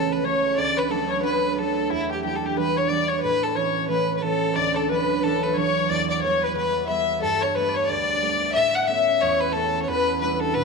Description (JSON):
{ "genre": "celtic folk, Celtic hornpipe", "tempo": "181 BPM", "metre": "4/4", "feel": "swing 60% on 8ths", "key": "E dorian", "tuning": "A4 = 440 Hz", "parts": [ { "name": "rich fiddle", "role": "melody", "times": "0.0-10.6 s", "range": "E4 to F#5", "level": "-24 LUFS", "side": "left 1 dB", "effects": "none" }, { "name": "dark violin", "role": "second line", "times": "0.0-10.6 s", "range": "E4 to F#5", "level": "-25 LUFS", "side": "left 11 dB", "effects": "slapback echo" }, { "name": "concert harp", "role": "accompaniment", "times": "0.0-10.6 s", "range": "C#2 to E4", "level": "-26 LUFS", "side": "right 11 dB", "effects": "none" } ], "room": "wet plate reverb, RT60 2.6 s", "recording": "1960s-style stereo with parts hard left and right", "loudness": "-20 LUFS", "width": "side -4 dB against mid", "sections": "0.0-7.2 A section; 7.2-10.6 B section", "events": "none", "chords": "0.0 A/C#; 0.6 D; 1.9 Em7; 3.2 A; 4.6 Dadd9; 5.9 Em; 7.2 Gadd9; 8.5 Aadd9; 9.9 Em7", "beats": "0.24 | 0.57 0.90 1.24 1.57 | 1.90 2.23 2.57 2.90 | 3.23 3.56 3.90 4.23 | 4.56 4.89 5.22 5.55 | 5.89 6.22 6.55 6.88 | 7.22 7.55 7.88 8.21 | 8.54 8.88 9.21 9.54 | 9.87 10.21 10.54" }